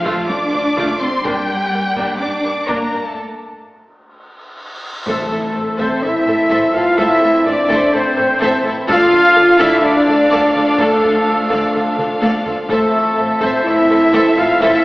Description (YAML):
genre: cinematic, epic orchestral film score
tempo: 126 BPM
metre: 4/4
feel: straight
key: A minor from 5.1 s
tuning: A4 = 440 Hz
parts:
  - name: dark symphonic violin section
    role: melody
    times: 0.0-14.8 s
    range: A4 to D6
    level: -24 LUFS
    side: left 1 dB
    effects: none
  - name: rich symphonic violin section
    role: second line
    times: 0.0-14.8 s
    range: E4 to F5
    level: -25 LUFS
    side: left 1 dB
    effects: none
  - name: mellow French horn section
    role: sustained chords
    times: 0.0-14.8 s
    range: F3 to F4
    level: -17 LUFS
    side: equal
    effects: none
  - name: warm chamber cello section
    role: bass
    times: 0.0-14.7 s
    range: A2 to D4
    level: -26 LUFS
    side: equal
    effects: none
  - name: rich studio viola section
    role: accompaniment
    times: 0.1-14.8 s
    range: F3 to A4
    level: -22 LUFS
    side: equal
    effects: none
  - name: rich symphonic double bass section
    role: bass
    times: 0.1-14.7 s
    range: A1 to G2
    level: -33 LUFS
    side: equal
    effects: none
  - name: taiko ensemble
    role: drums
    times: 0.1-14.8 s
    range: none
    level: -27 LUFS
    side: equal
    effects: none
  - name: cymbal swell and impact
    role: sound effects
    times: 4.1-7.0 s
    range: none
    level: -31 LUFS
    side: equal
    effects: none
  - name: hollow concert flute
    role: second line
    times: 5.1-14.8 s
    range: A4 to F5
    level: -21 LUFS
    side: equal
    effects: none
  - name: rich symphonic string section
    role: sustained chords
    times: 5.1-14.8 s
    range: A3 to F5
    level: -24 LUFS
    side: equal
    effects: none
  - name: warm trombone section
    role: sustained chords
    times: 5.1-14.8 s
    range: E3 to D4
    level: -25 LUFS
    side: right 1 dB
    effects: none
  - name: warm trumpet section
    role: stabs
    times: 5.1-14.8 s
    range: A4 to F5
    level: -18 LUFS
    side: equal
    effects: none
  - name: timpani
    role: percussion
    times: 5.1-5.8 s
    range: A2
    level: -36 LUFS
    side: equal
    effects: none
room: wet scoring stage reverb, RT60 1.7 s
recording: heard from further back in the room, AM radio sound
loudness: -12 LUFS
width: side -19 dB against mid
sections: 0.0-5.1 A section; 5.1-14.8 B section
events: break 3.2-5.1; cymbal swell 4.1-5.1; drum fill 4.4-5.1, 12.0-12.7; impact 5.1-7.0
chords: 0.0 Dm; 1.3 Gm; 5.1 Am; 8.9 Dm; 12.7 Am